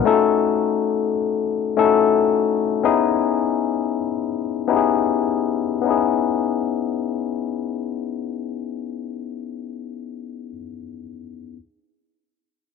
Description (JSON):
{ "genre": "R&B", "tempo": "75-88 BPM", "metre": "4/4", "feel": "swing 59% on 16ths", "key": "C# minor", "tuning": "A4 = 438 Hz", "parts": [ { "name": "barky tine electric piano", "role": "accompaniment", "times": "0.0-11.6 s", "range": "A3 to A4", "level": "-20 LUFS", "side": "left 8 dB", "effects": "overdrive, low-pass filter" } ], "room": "wet spring reverb, RT60 2.1 s", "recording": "1960s-style stereo", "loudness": "-19 LUFS", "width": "side -5 dB against mid", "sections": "0.0-5.8 A section; 5.8-9.1 B section", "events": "filter sweep on tine electric piano 0.0-5.8; slowing down 0.0-5.8", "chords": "0.0 D#m7b5; 2.8 C#m9" }